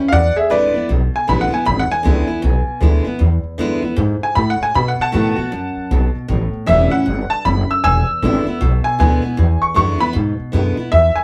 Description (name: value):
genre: rockabilly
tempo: 156 BPM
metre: 4/4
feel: swing 61% on 8ths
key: E mixolydian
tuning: A4 = 440 Hz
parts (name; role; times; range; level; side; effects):
- picked steel-string acoustic guitar; accompaniment; 0.0-11.2 s; E2 to F#4; -24 LUFS; equal; none
- bright upright piano; melody; 0.1-11.2 s; G#4 to E6; -20 LUFS; equal; none
- upright bass; bass; 0.1-11.2 s; E1 to B2; -19 LUFS; equal; none
room: moderate studio reverb, RT60 0.5 s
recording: band playing live in one room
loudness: -17 LUFS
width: mono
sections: 0.0-10.9 A section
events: upright piano solo 0.0-10.9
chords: 0.1 E7; 4.8 B7; 6.3 A7; 7.8 E7